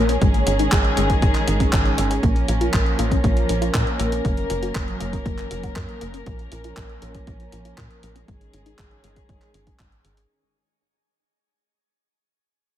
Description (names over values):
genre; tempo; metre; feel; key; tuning
italo disco; 119 BPM; 4/4; straight; unclear; A4 = 440 Hz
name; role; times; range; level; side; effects
dark studio string section; sustained chords; 0.0-10.3 s; Eb3 to Bb4; -25 LUFS; right 1 dB; low-pass filter, shimmer reverb
analog pluck; arpeggios; 0.0-10.3 s; Ab3 to Eb5; -28 LUFS; left 3 dB; chorus, phaser, ping-pong delay, shimmer reverb
tight sequencer bass; bass; 0.0-10.3 s; Gb1 to Bb2; -25 LUFS; equal; none
clean 12-bit digital drum machine; drums; 0.1-10.3 s; handclaps, hi-hat; -28 LUFS; equal; gated reverb
electronic kick drum; drums; 0.2-9.9 s; none; -22 LUFS; equal; overdrive
room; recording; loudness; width
light reverb, digital ambience; none; -18 LUFS; side -11 dB against mid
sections
0.0-10.3 A section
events
fade-out 0.0-10.3; filter sweep on string section 0.0-10.3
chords
0.2 Absus4; 2.2 Bbm; 4.2 Gb; 6.3 Bbm; 8.3 Absus4